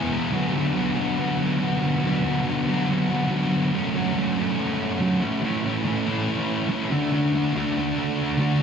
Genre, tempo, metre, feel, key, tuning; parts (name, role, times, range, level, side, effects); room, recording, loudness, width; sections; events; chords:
rock; 141 BPM; 4/4; straight; A4 = 437 Hz
sludgy distorted guitar; solo; 0.0-8.6 s; A2 to G#4; -21 LUFS; equal; overdrive, ping-pong delay
wet huge ambient reverb, RT60 4.1 s; dreamy mix soaked in reverb; -21 LUFS; side -7 dB against mid
0.0-3.7 A section; 3.7-8.6 B section
0.3 Bm/D; 3.7 F#m; 5.2 A; 6.9 D